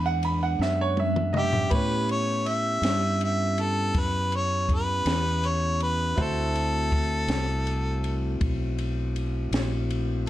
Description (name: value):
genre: slow blues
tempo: 54 BPM (dotted quarters)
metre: 12/8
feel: straight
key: A mixolydian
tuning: A4 = 440 Hz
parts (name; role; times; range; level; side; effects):
- bright grand piano; accompaniment; 0.0-10.3 s; G#3 to B5; -30 LUFS; right 3 dB; none
- mellow tonewheel organ; sustained chords; 0.0-10.3 s; G#3 to F#5; -33 LUFS; equal; slow rotary speaker
- fingered electric bass; bass; 0.0-10.3 s; Bb1 to A2; -27 LUFS; equal; none
- compact cocktail drum kit; drums; 0.2-10.3 s; kick drum, ride cymbal, snare drum, toms; -31 LUFS; equal; none
- bright harmonica; melody; 1.4-8.4 s; G4 to E5; -27 LUFS; equal; overdrive
room: light reverb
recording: dark, warm production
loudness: -23 LUFS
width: side -14 dB against mid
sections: 0.0-1.7 A section; 1.7-10.3 B section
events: grand piano solo 0.0-1.7; drum fill 0.6-1.7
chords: 0.0 E9; 1.7 A9; 6.2 D9